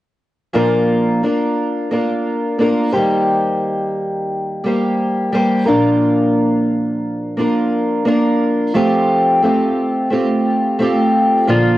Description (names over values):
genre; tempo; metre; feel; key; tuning
acoustic pop; 88 BPM; 4/4; straight; Bb major; A4 = 440 Hz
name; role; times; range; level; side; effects
fingerpicked twelve-string acoustic guitar; accompaniment; 0.5-11.8 s; Bb2 to C5; -14 LUFS; equal; cassette tape
clean lap steel guitar; melody; 11.5-11.8 s; F4; -15 LUFS; left 1 dB; none
room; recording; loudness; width
moderate small room reverb, RT60 0.5 s; home recording on cassette, nothing above 10.4 kHz; -14 LUFS; side -15 dB against mid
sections
0.5-11.5 A section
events
none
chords
0.5 Bb; 2.9 Eb6; 5.7 Bb; 8.7 Fadd9